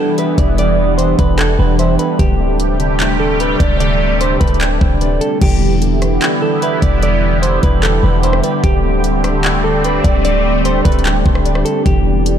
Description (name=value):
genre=hip hop, atmospheric cloud-rap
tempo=149 BPM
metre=4/4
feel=half-time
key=E minor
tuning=A4 = 440 Hz
part: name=semi-hollow electric guitar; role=melody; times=0.0-12.2 s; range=G4 to D5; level=-20 LUFS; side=right 1 dB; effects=tape echo
part: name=sweeping resonant pad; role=sustained chords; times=0.0-12.4 s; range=C3 to G4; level=-16 LUFS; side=equal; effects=chorus, sidechain pumping
part: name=warbly lo-fi synth keys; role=arpeggios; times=0.0-12.4 s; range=D3 to E5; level=-23 LUFS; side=right 4 dB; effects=chorus, tape echo
part: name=smooth R&B drum kit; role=drums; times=0.2-12.4 s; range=crash cymbal, handclaps, hi-hat, kick drum, rim click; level=-18 LUFS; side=equal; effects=none
part: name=warm 808-style bass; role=bass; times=0.4-12.4 s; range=D1 to E1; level=-16 LUFS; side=equal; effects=none
room=moderate church reverb, RT60 3.2 s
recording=dreamy mix soaked in reverb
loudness=-11 LUFS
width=side -9 dB against mid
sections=0.0-5.4 A section; 5.4-12.4 B section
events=none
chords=0.0 Em7; 2.2 D7sus4; 5.4 Em7; 8.6 D7sus4; 11.9 Em7